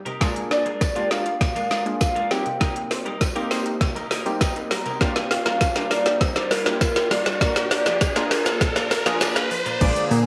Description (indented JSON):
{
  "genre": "dance-pop",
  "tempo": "100 BPM",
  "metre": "4/4",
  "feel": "straight",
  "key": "unclear",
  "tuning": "A4 = 441 Hz",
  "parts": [
    { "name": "analog pluck", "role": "arpeggios", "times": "0.0-9.8 s", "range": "Bb2 to C5", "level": "-37 LUFS", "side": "equal", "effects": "none" },
    { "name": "twelve-string electric guitar", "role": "riff", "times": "0.1-10.2 s", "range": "G3 to Bb4", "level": "-35 LUFS", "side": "equal", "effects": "subtle chorus" },
    { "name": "smooth R&B drum kit", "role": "drums", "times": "0.1-10.2 s", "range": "crash cymbal, hi-hat, kick drum, shaker, snare drum", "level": "-25 LUFS", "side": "equal", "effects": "none" },
    { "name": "warm analog keys", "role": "accompaniment", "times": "0.2-10.3 s", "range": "Bb3 to Bb5", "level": "-31 LUFS", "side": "equal", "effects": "chorus, sidechain pumping" },
    { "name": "tambourine", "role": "percussion", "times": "0.2-10.2 s", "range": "none", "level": "-42 LUFS", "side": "equal", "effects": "none" },
    { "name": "riser", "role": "sound effects", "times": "2.8-9.8 s", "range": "none", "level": "-32 LUFS", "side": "equal", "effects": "none" },
    { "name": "hollow clarinet-like synth lead", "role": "melody", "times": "0.5-8.9 s", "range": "Bb4 to G5", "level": "-27 LUFS", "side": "equal", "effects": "chorus, tape echo" },
    { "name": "fat analog lead", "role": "melody", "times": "9.8-10.0 s", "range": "D5", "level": "-27 LUFS", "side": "equal", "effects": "sidechain pumping" },
    { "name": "lush unison pad", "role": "sustained chords", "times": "9.8-10.3 s", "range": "D3 to Ab4", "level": "-31 LUFS", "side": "equal", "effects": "chorus, sidechain pumping" },
    { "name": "chorused synth bass", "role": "bass", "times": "9.8-10.3 s", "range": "Bb1 to Bb2", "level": "-21 LUFS", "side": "equal", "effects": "sidechain pumping" }
  ],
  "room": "moderate plate reverb, RT60 1.5 s",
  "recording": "none",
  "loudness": "-22 LUFS",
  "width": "mono",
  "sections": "0.0-9.8 A section",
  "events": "build-up 0.0-9.8; drum fill 0.0-9.8; riser 2.8-9.8; synth keys fill 4.1-5.0",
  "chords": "0.2 Bb7; 2.3 Cm7; 5.0 Gm7; 7.4 Bb"
}